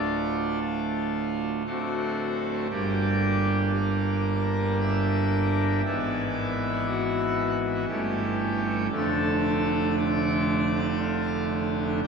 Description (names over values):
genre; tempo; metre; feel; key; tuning
classical, chorale-style piece for pipe organ; 58 BPM; 3/4; rubato; D minor; A4 = 440 Hz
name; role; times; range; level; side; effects
pipe organ, full organ; solo; 0.0-12.1 s; D1 to G5; -24 LUFS; right 1 dB; none
room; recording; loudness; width
wet church reverb, RT60 3.4 s; worn, warbling old tape, cassette tape, warbly pitch drift, studio ambience; -24 LUFS; side -5 dB against mid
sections
0.0-12.1 A section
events
none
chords
0.0 Dm; 1.7 D7; 2.7 Gm; 5.8 E7/G#; 7.9 A7/G; 8.9 Dm/F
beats
0.62 1.67 | 2.71 3.74 4.81 | 5.85 6.88 7.89 | 8.91 9.98 11.02 | 12.04